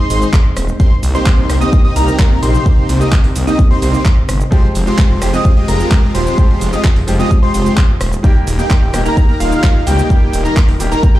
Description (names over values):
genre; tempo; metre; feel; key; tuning
EDM, festival progressive house; 129 BPM; 4/4; straight; unclear; A4 = 440 Hz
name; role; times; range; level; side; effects
lush unison pad; sustained chords; 0.0-11.2 s; C3 to Bb4; -25 LUFS; equal; none
plucky unison lead; arpeggios; 0.0-11.2 s; F5 to Eb6; -23 LUFS; equal; wide subtle chorus, sidechain pumping, tape echo
supersaw chords; riff; 0.0-11.2 s; Ab3 to Eb5; -19 LUFS; equal; sidechain pumping, tape echo
detuned saw bass; bass; 0.1-10.9 s; Eb1 to Db2; -16 LUFS; equal; sidechain pumping
house drum kit; drums; 0.1-11.1 s; handclaps, hi-hat, rim click, shaker; -23 LUFS; right 1 dB; none
electronic kick drum; drums; 0.3-11.1 s; none; -10 LUFS; equal; none
clear baby grand piano; accompaniment; 4.5-11.2 s; Eb3 to G4; -23 LUFS; left 1 dB; vintage 12-bit sampler grit, sidechain pumping, tape echo
room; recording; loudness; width
digital ambience; played on a big sound system in a bare room, large studio reverb; -10 LUFS; side -15 dB against mid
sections
0.0-11.2 A section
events
none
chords
0.0 Ab; 0.8 Cm7; 4.5 Fmadd9; 8.2 Eb